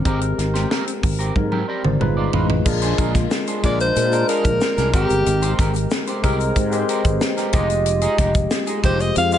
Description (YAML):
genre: polished 1980s jazz-funk pop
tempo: 92 BPM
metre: 4/4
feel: straight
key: unclear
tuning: A4 = 440 Hz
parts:
  - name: barky tine electric piano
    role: accompaniment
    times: 0.0-9.4 s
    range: Ab3 to F5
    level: -22 LUFS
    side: left 1 dB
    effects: lush chorus
  - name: sustaining fretless electric bass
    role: bass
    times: 0.0-9.4 s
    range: F1 to Bb2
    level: -21 LUFS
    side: equal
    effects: ensemble chorus
  - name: electric guitar at the edge of break-up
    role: riff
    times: 0.1-9.4 s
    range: Ab3 to D5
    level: -29 LUFS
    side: right 4 dB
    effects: lush chorus
  - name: tight funk drum kit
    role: drums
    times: 0.1-9.4 s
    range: crash cymbal, hi-hat, kick drum, snare drum, toms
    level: -22 LUFS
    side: equal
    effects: gated reverb
  - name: tube shaker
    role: percussion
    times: 2.7-9.4 s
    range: none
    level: -38 LUFS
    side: left 8 dB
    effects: none
  - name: breathy alto saxophone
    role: melody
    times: 3.7-9.4 s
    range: G4 to F5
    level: -21 LUFS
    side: equal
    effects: none
room: light reverb, small room ambience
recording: nothing above 10.9 kHz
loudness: -17 LUFS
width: side -10 dB against mid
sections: 0.0-2.7 A section; 2.7-9.4 B section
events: drum fill 1.4-2.7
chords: 0.1 Abmaj9; 2.0 G7b9b13; 2.7 Bb7; 4.9 Abmaj9; 7.5 Fm9